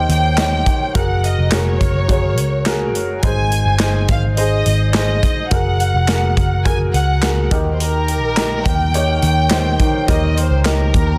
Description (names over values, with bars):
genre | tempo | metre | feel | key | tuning
piano-driven pop | 105 BPM | 4/4 | straight | unclear | A4 = 440 Hz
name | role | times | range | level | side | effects
warm studio violin section | melody | 0.0-11.2 s | Bb4 to Ab5 | -24 LUFS | equal | none
clear upright piano | accompaniment | 0.0-11.2 s | Eb3 to Db5 | -24 LUFS | equal | none
vintage muted picked electric bass | bass | 0.0-11.2 s | F1 to Eb2 | -20 LUFS | equal | none
modern studio drum kit | drums | 0.1-11.1 s | handclaps, hi-hat, kick drum, snare drum | -21 LUFS | equal | none
room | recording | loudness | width
light reverb | dense, heavily limited modern master | -16 LUFS | mono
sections
0.0-11.2 A section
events
none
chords
0.0 Eb; 0.9 Gbadd9; 3.2 Ab; 5.5 Gbadd9; 7.5 Eb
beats
0.37 | 0.94 1.52 2.09 2.66 | 3.23 3.80 4.37 4.94 | 5.51 6.08 6.66 7.23 | 7.80 8.37 8.94 9.51 | 10.08 10.65